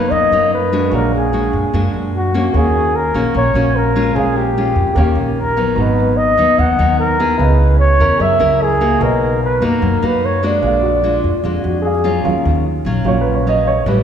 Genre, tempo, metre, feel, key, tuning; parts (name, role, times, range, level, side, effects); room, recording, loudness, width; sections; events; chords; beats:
bossa nova; 148 BPM; 4/4; straight; Eb minor; A4 = 440 Hz
breathy flugelhorn; melody; 0.0-11.9 s; F#4 to Gb5; -16 LUFS; equal
nylon-string guitar; accompaniment; 0.0-14.0 s; F#2 to Bb4; -19 LUFS; left 2 dB
warm grand piano; accompaniment; 0.0-14.0 s; Gb3 to A#5; -22 LUFS; right 3 dB
upright bass; bass; 0.1-14.0 s; Ab1 to F#2; -18 LUFS; right 1 dB
breathy trombone; second line; 10.8-12.2 s; F4 to Ab4; -21 LUFS; left 4 dB
wet concert hall reverb, RT60 1.8 s; recorded in a church or concert hall; -12 LUFS; side -8 dB against mid
0.0-12.2 A section; 12.2-14.0 B section
grand piano solo 12.2-14.0
0.0 Bmaj7; 0.9 Bb7alt; 2.5 Ebm7; 4.2 Bbm7; 5.0 Eb7; 5.8 Abm7; 7.4 Dbm7; 8.2 Gb7; 9.0 Bmaj7; 10.6 Bb7b13; 12.2 Ebm9
0.12 0.52 | 0.93 1.33 1.74 2.14 | 2.54 2.95 3.35 3.75 | 4.16 4.56 4.97 5.37 | 5.78 6.18 6.58 6.99 | 7.39 7.80 8.20 8.61 | 9.01 9.42 9.82 10.22 | 10.63 11.03 11.44 11.84 | 12.24 12.65 13.05 13.46 | 13.86